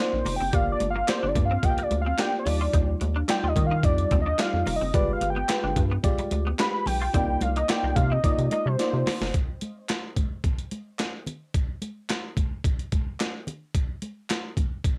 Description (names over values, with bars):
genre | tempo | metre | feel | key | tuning
early-eighties boogie funk | 109 BPM | 4/4 | straight | unclear | A4 = 440 Hz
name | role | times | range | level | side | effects
fat analog lead | melody | 0.0-9.3 s | C5 to B5 | -30 LUFS | equal | chorus, cassette tape, plate reverb
FM electric piano | accompaniment | 0.0-9.2 s | G3 to F5 | -33 LUFS | equal | cassette tape, plate reverb
rubbery square bass | bass | 0.1-9.3 s | F1 to Eb3 | -29 LUFS | equal | none
clean electric guitar | riff | 0.3-9.3 s | G3 to F4 | -38 LUFS | equal | ensemble chorus, cassette tape
breakbeat sampler-style drum kit | drums | 0.3-15.0 s | handclaps, hi-hat, kick drum, snare drum | -29 LUFS | equal | cassette tape
congas | percussion | 0.3-15.0 s | none | -39 LUFS | equal | none
room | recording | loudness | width
light reverb | home recording on cassette | -26 LUFS | mono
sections
0.0-9.3 A section; 9.3-15.0 B section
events
analog synth lead solo 0.0-9.3; drum fill 8.8-9.3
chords
0.0 Cm11; 0.5 Gm7; 2.5 Ebmaj9; 4.9 G7b9; 7.1 Cm11; 9.3 N.C.